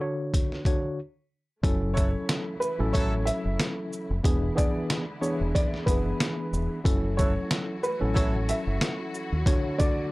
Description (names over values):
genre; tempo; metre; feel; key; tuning
hip hop, boom-bap hip-hop; 92 BPM; 4/4; swing 56% on 16ths; F# minor; A4 = 440 Hz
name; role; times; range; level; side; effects
mellow tine electric piano; accompaniment; 0.0-10.1 s; D3 to D5; -30 LUFS; left 1 dB; medium stereo tremolo
trip hop sampler-style drum kit; drums; 0.3-10.0 s; hi-hat, kick drum, shaker, snare drum; -26 LUFS; equal; none
warm studio string section; sustained chords; 1.6-10.1 s; C#3 to F#4; -39 LUFS; left 1 dB; none
deep dub fingered electric bass; bass; 1.6-9.4 s; E1 to D#2; -28 LUFS; equal; none
dark upright piano; melody; 1.9-10.1 s; B4 to E5; -32 LUFS; right 1 dB; tape echo
mellow horn section; stabs; 1.9-3.1, 7.2-8.4 s; F#3 to A4; -37 LUFS; equal; tape echo
room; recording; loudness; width
little or no reverb; dry, gritty hardware recording; -24 LUFS; side -21 dB against mid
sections
0.0-1.6 A section; 1.6-10.1 B section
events
break 0.0-1.6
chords
0.0 Dmaj7; 1.6 F#m7; 4.2 E7; 6.9 F#m7; 9.5 Dmaj7